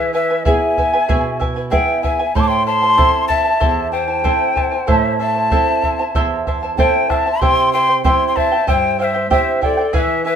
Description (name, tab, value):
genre	andean folk, Andean ensemble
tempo	95 BPM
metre	4/4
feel	straight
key	A minor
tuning	A4 = 440 Hz
part	quena	melody	0.0-10.4 s	D5 to D6	-18 LUFS	left 2 dB	none
part	reedy pan flute	second line	0.0-10.4 s	A4 to A5	-21 LUFS	left 4 dB	none
part	charango	accompaniment	0.0-10.4 s	E4 to A5	-21 LUFS	right 3 dB	none
part	flamenco guitar	accompaniment	0.0-10.4 s	E2 to A4	-22 LUFS	right 6 dB	none
part	bombo	percussion	0.5-10.1 s	none	-20 LUFS	equal	none
room	moderate studio reverb, RT60 0.6 s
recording	minimal, uncompressed stereo recording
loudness	-13 LUFS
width	side -8 dB against mid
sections	0.0-7.4 A section; 7.4-10.4 A section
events	none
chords	0.0 E; 2.3 Am; 7.4 C